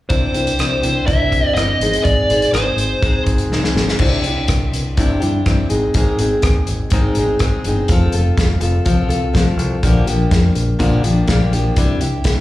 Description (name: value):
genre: folk rock and heartland rock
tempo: 123 BPM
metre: 4/4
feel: straight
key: unclear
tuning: A4 = 440 Hz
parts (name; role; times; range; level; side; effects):
- dark smooth lead guitar; melody; 0.1-3.2 s; C5 to E5; -18 LUFS; right 1 dB; overdrive, slapback echo
- picked steel-string acoustic guitar; accompaniment; 0.1-12.4 s; Ab2 to C5; -19 LUFS; left 2 dB; slapback echo
- fingered electric bass; bass; 0.1-12.4 s; F1 to Bb2; -18 LUFS; equal; none
- loose indie drum kit; drums; 0.1-12.4 s; crash cymbal, hi-hat, kick drum, rim click, snare drum; -19 LUFS; equal; none
room: little or no reverb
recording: live gig heard through the venue's PA, club reverb, small room reverb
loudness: -14 LUFS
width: side -16 dB against mid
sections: 0.1-4.0 A section; 4.0-12.4 B section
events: drum fill 3.5-4.0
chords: 0.1 Cadd9; 1.8 Ab; 4.0 Cadd9; 5.7 Ab; 7.9 F; 9.8 Bb6; 11.8 Cadd9